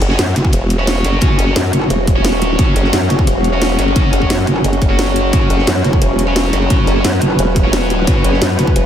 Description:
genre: dark technical drum and bass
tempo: 175 BPM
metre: 4/4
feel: straight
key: unclear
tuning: A4 = 440 Hz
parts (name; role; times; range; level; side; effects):
- metallic inharmonic drone; sustained chords; 0.7-8.9 s; F#3 to B4; -19 LUFS; left 1 dB; chorus, built-in reverb, sidechain pumping
- formant-sweep wobble bass; bass; 0.0-8.9 s; E1 to F#1; -16 LUFS; equal; chorus
- crunchy breakbeat drum kit; drums; 0.0-8.8 s; ride cymbal, snare drum; -28 LUFS; equal; none
- drum and bass drum kit; drums; 0.0-8.8 s; hi-hat, snare drum; -21 LUFS; equal; studio ambience
- high-gain distorted guitar; stabs; 0.1-8.4 s; C#4 to C#5; -21 LUFS; right 1 dB; distortion, vintage 12-bit sampler grit, ping-pong delay
- metallic wobble bass; bass; 0.2-8.7 s; F#1 to F#2; -16 LUFS; equal; distortion, chorus, sidechain pumping
- electronic kick drum; drums; 0.4-8.7 s; none; -15 LUFS; equal; studio ambience
room: light reverb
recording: none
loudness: -11 LUFS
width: side -9 dB against mid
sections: 0.0-8.9 A section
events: none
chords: 0.0 F#5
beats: 0.19 0.53 0.87 | 1.22 1.56 1.90 2.25 | 2.59 2.93 3.27 3.62 | 3.96 4.30 4.64 4.99 | 5.33 5.67 6.02 6.36 | 6.70 7.04 7.39 7.73 | 8.07 8.42 8.76

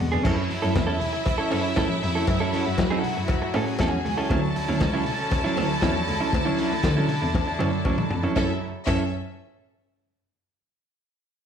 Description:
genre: disco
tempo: 118 BPM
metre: 4/4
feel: straight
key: F# minor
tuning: A4 = 440 Hz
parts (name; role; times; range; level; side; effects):
- clean electric guitar; accompaniment; 0.0-9.0 s; F#3 to A4; -28 LUFS; right 5 dB; slapback echo
- clear studio string section; sustained chords; 0.0-8.6 s; C#3 to F#4; -31 LUFS; left 3 dB; none
- warm cello; bass; 0.0-9.1 s; C#2 to F#3; -27 LUFS; equal; none
- vintage drum kit; drums; 0.0-9.0 s; crash cymbal, hi-hat, kick drum, snare drum, toms; -28 LUFS; equal; none
- warm studio violin section; second line; 0.2-9.1 s; C#4 to A5; -29 LUFS; equal; slapback echo
- cowbell; percussion; 0.3-9.1 s; none; -36 LUFS; left 6 dB; slapback echo
- congas; percussion; 0.5-9.1 s; none; -36 LUFS; left 6 dB; none
room: light reverb, studio ambience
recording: live gig heard through the venue's PA, club ambience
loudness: -21 LUFS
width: side -8 dB against mid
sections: 0.2-8.4 A section; 8.4-10.4 B section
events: drum fill 7.3-8.4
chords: 0.2 F#m7; 4.3 Dmaj9; 8.4 F#m7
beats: | 0.25 0.75 1.26 1.77 | 2.27 2.78 3.29 3.79 | 4.30 4.81 5.32 5.82 | 6.33 6.84 7.35 7.86 | 8.36 8.87

